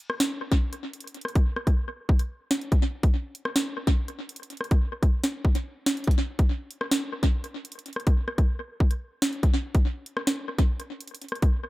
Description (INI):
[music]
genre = hip hop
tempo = 143 BPM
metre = 4/4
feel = half-time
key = none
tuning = none
[part]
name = drill drum kit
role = drums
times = 0.1-11.5 s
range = hi-hat, kick drum, rim click, snare drum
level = -23 LUFS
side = equal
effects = tape echo
[sound]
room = light reverb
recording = echo-heavy mix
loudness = -24 LUFS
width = side -19 dB against mid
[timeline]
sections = 0.0-11.7 A section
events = none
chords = none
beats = 0.20 0.62 | 1.04 1.46 1.88 2.30 | 2.72 3.14 3.56 3.98 | 4.40 4.82 5.24 5.66 | 6.08 6.50 6.91 7.33 | 7.75 8.17 8.59 9.01 | 9.43 9.85 10.27 10.69 | 11.11